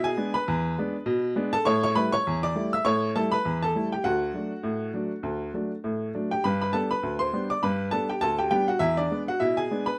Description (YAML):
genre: ragtime piano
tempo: 101 BPM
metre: 2/4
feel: swing 59% on 16ths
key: G major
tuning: A4 = 440 Hz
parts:
  - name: clear upright piano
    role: solo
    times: 0.0-10.0 s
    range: D2 to E6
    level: -26 LUFS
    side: equal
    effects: none
room: moderate studio reverb, RT60 0.6 s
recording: dark, warm production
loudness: -26 LUFS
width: mono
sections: 0.0-10.0 A section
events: none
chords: 0.0 E7; 1.7 A7; 4.1 D; 6.4 G; 8.8 E7